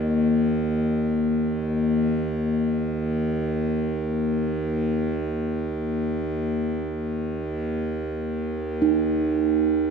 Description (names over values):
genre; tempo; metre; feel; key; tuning
world meditative, free-time meditation music; free time; none; none; unclear; A4 = 440 Hz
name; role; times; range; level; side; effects
hand-pumped harmonium; drone; 0.0-9.9 s; Eb2 to Eb3; -25 LUFS; right 1 dB; none
bronze singing bowl; texture; 0.0-9.9 s; Bb3 to Eb4; -25 LUFS; equal; none
room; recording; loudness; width
wet echo chamber reverb, RT60 1.4 s; none; -22 LUFS; side -6 dB against mid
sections
0.0-9.9 A section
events
none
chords
none